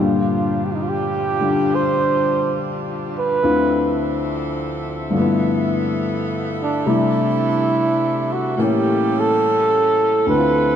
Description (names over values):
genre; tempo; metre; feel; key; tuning
jazz ballad; 70 BPM; 4/4; swing 68% on 8ths; unclear; A4 = 439 Hz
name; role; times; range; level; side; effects
breathy flugelhorn; melody; 0.0-10.8 s; D4 to C5; -19 LUFS; right 3 dB; none
warm upright piano; accompaniment; 0.0-10.8 s; D2 to G4; -20 LUFS; left 2 dB; none
warm saxophone section; sustained chords; 0.0-10.8 s; F3 to E5; -26 LUFS; right 1 dB; none
room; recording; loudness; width
moderate plate reverb, RT60 3.6 s; dark, warm production; -17 LUFS; side -9 dB against mid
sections
0.0-10.8 A section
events
none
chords
0.0 Gm7; 3.4 Dm9; 5.2 G13; 6.9 C69; 8.6 A7b9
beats
0.85 1.71 2.57 | 3.43 4.29 5.15 6.01 | 6.87 7.72 8.58 9.44 | 10.30